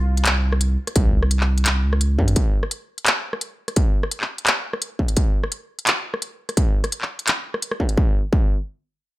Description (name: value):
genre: half-time drum and bass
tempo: 171 BPM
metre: 4/4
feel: half-time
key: unclear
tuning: A4 = 441 Hz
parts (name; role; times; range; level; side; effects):
- koto; arpeggios; 0.0-1.6 s; C4 to C5; -40 LUFS; left 2 dB; low-pass filter, tape echo
- saturated sub bass; bass; 0.0-2.3 s; C2 to G2; -18 LUFS; equal; none
- industrial drum kit; drums; 0.2-8.0 s; handclaps, hi-hat, rim click; -21 LUFS; equal; small room ambience
- electronic kick drum; drums; 1.0-8.4 s; none; -18 LUFS; equal; distortion, small room ambience
room: little or no reverb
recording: none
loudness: -19 LUFS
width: side -18 dB against mid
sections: 0.0-8.0 A section; 8.0-9.2 B section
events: none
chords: 0.0 C5; 2.4 N.C.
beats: 0.25 0.60 | 0.96 1.31 1.66 2.01 | 2.36 2.71 3.06 3.41 | 3.76 4.11 4.46 4.82 | 5.17 5.52 5.87 6.22 | 6.57 6.92 7.27 7.62 | 7.97 8.32